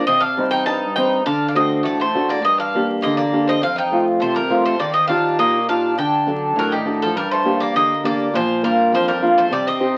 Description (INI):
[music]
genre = greek folk, Greek bouzouki band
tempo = 102 BPM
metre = 2/4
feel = straight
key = G minor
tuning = A4 = 440 Hz
[part]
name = Greek bouzouki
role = melody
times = 0.0-9.9 s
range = G4 to A5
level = -23 LUFS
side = equal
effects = none
[part]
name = Greek bouzouki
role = second line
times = 0.0-9.9 s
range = Eb3 to Eb4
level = -27 LUFS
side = equal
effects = none
[part]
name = fingerpicked acoustic archtop guitar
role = accompaniment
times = 0.0-10.0 s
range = F2 to A4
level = -21 LUFS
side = equal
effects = none
[sound]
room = moderate studio reverb, RT60 0.6 s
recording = very old 78 rpm record, vinyl crackle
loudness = -18 LUFS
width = mono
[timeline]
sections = 0.0-7.2 A section; 7.2-10.0 A section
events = none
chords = 0.1 Cm; 1.3 D; 2.4 Gm; 3.6 F; 4.8 Ebadd9; 6.0 D; 7.2 Gm; 8.3 Bb